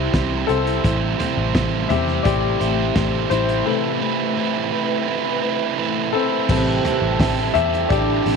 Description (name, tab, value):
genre	piano-driven pop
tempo	85 BPM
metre	4/4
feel	straight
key	A minor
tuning	A4 = 440 Hz
part	warm grand piano	accompaniment	0.0-8.4 s	C3 to E5	-23 LUFS	left 10 dB	none
part	airy breathy pad	sustained chords	0.0-8.4 s	C3 to A5	-27 LUFS	left 2 dB	chorus, phaser
part	overdriven electric guitar	riff	0.0-8.4 s	A2 to C5	-22 LUFS	right 11 dB	none
part	vintage muted picked electric bass	bass	0.0-8.4 s	A1 to E2	-24 LUFS	equal	none
part	loose indie drum kit	drums	0.1-8.4 s	crash cymbal, hi-hat, kick drum, snare drum, toms	-24 LUFS	equal	none
part	mellow French horn section	second line	6.5-8.4 s	C3 to D4	-25 LUFS	right 10 dB	none
room	moderate echo chamber reverb, RT60 2.4 s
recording	1960s-style stereo with parts hard left and right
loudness	-17 LUFS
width	side -5 dB against mid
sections	0.0-6.5 A section; 6.5-8.4 A section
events	grand piano solo 0.0-6.5, 6.5-8.4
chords	0.0 C; 0.8 Am7; 3.7 Amadd9; 6.5 Am7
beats	0.14 | 0.84 1.55 2.26 2.96 | 3.67 4.37 5.08 5.78 | 6.49 7.20 7.90